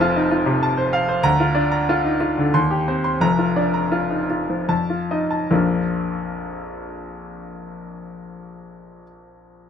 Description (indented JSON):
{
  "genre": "classical, virtuoso piano study",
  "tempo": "71-97 BPM",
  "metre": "3/4",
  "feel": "rubato",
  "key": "Bb major",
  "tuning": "A4 = 439 Hz",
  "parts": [
    { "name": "clear grand piano", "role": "solo", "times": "0.0-9.7 s", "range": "F1 to C6", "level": "-19 LUFS", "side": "equal", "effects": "none" }
  ],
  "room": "moderate large studio reverb, RT60 1.0 s",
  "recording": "close, detailed microphones",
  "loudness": "-18 LUFS",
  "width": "side -8 dB against mid",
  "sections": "0.0-5.5 A section; 5.5-9.7 B section",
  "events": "slowing down 0.3-5.5",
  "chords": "0.0 F; 1.2 Bb/D; 2.5 Cm/Eb; 3.2 Bb/F; 4.7 F7; 5.5 Bb"
}